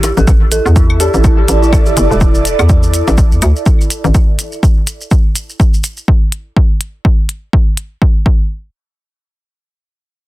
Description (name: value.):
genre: minimal techno.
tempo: 124 BPM.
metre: 4/4.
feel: swing 58% on 16ths.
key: unclear.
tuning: A4 = 441 Hz.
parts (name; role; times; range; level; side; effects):
hollow knocking FM bass; bass; 0.0-4.1 s; E1 to E2; -12 LUFS; equal; sidechain pumping.
electronic hi-hat; drums; 0.0-7.9 s; none; -18 LUFS; left 1 dB; none.
bongos, congas and claves; percussion; 0.0-4.1 s; none; -20 LUFS; left 5 dB; dub echo.
maracas; percussion; 0.0-6.1 s; none; -24 LUFS; right 1 dB; none.
dark detuned synth bell; riff; 0.2-2.1 s; E4 to A4; -19 LUFS; right 1 dB; chorus, sidechain pumping, low-pass filter, dub echo.
electronic kick drum; drums; 0.3-8.4 s; none; -10 LUFS; equal; overdrive.
airy breathy pad; texture; 0.6-4.1 s; E4 to D5; -18 LUFS; right 2 dB; chorus, phaser, sidechain pumping.
filtered dub chord stab; stabs; 1.0-1.1 s; D4 to A4; -26 LUFS; left 3 dB; none.
room: light reverb.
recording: dense, heavily limited modern master.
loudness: -9 LUFS.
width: side -17 dB against mid.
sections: 0.3-8.0 A section; 8.0-10.3 B section.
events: break 0.0.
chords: 0.3 Asus4; 8.0 N.C..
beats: | 0.28 0.76 1.24 1.73 | 2.21 2.69 3.18 3.66 | 4.15 4.63 5.11 5.60 | 6.08 6.57 7.05 7.53 | 8.02.